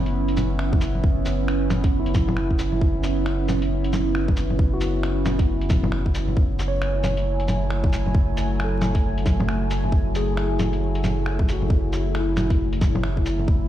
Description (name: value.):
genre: future garage.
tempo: 135 BPM.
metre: 4/4.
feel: swing 61% on 16ths.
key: F# minor.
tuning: A4 = 440 Hz.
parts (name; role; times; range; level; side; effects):
warbly tape-like pad; sustained chords; 0.0-13.7 s; F#3 to G#5; -27 LUFS; right 1 dB; chorus, built-in reverb, phaser, vintage 12-bit sampler grit, sidechain pumping.
warm sub bass; bass; 0.0-13.7 s; F#1; -25 LUFS; equal; tube saturation, sidechain pumping.
lo-fi sampler-style drum kit; drums; 0.1-13.5 s; bongos, cabasa, finger snaps, hi-hat; -28 LUFS; left 1 dB; small room ambience.
electronic kick drum; drums; 0.7-13.6 s; none; -20 LUFS; equal; small room ambience.
barky tine electric piano; accompaniment; 2.0-13.6 s; E4 to C#5; -31 LUFS; right 1 dB; medium stereo tremolo, sidechain pumping, analog delay.
room: light reverb.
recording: played on a big sound system in a bare room, stone room reverb, vinyl crackle.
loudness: -20 LUFS.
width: side -12 dB against mid.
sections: 0.0-6.4 A section; 6.4-13.7 A section.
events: none.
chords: 0.0 C#m7/F#; 6.4 F#m9.